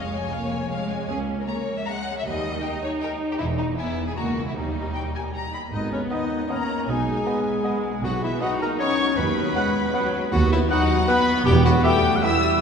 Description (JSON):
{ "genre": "cinematic", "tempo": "157 BPM", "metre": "3/4", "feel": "straight", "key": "G# minor", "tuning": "A4 = 440 Hz", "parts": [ { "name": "warm symphonic violin section", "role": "melody", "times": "0.0-12.5 s", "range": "D#5 to B5", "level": "-35 LUFS", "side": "left 4 dB", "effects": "none" }, { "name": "rich chamber violin section", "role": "second line", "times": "0.0-12.6 s", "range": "D#4 to E6", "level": "-30 LUFS", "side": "left 3 dB", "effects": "none" }, { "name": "rich chamber viola section", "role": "accompaniment", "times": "0.0-12.6 s", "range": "F#3 to D#4", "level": "-28 LUFS", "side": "equal", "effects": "none" }, { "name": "dark chamber double bass section", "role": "bass", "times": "0.0-11.8 s", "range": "E1 to D#2", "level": "-29 LUFS", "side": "right 2 dB", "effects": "none" }, { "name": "warm chamber cello section", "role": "bass", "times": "0.0-11.8 s", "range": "C#2 to B2", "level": "-30 LUFS", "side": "right 2 dB", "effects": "none" }, { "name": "bright clarinet", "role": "second line", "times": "5.7-12.6 s", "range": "C#4 to F#5", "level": "-26 LUFS", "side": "left 1 dB", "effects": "none" }, { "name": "mellow hollow flute section", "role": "second line", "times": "5.7-12.6 s", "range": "C#5 to E6", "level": "-30 LUFS", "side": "left 2 dB", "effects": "none" }, { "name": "mellow French horn section", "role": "sustained chords", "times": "5.7-12.6 s", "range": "C#3 to E4", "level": "-27 LUFS", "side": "left 2 dB", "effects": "none" }, { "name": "mellow tuba", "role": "bass", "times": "5.7-11.8 s", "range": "E1 to D#2", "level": "-31 LUFS", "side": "right 3 dB", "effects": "none" }, { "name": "warm cor anglais", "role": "second line", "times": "6.1-12.4 s", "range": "D#5 to F#5", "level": "-33 LUFS", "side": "right 2 dB", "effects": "none" }, { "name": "mellow bassoon", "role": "accompaniment", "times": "6.1-12.4 s", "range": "B3", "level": "-32 LUFS", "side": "equal", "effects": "none" } ], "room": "wet cathedral reverb, RT60 4.9 s", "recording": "recorded in a church or concert hall, nothing above 11.0 kHz", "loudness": "-21 LUFS", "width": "side -6 dB against mid", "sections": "0.0-5.7 A section; 5.7-12.6 B section", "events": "none", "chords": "0.0 Db/F; 1.1 C#5; 2.2 D#; 3.4 Emaj7; 4.2 F#7/C#; 4.6 D#; 5.7 G#m; 6.9 G#m/B; 9.2 B/D#; 11.5 Em" }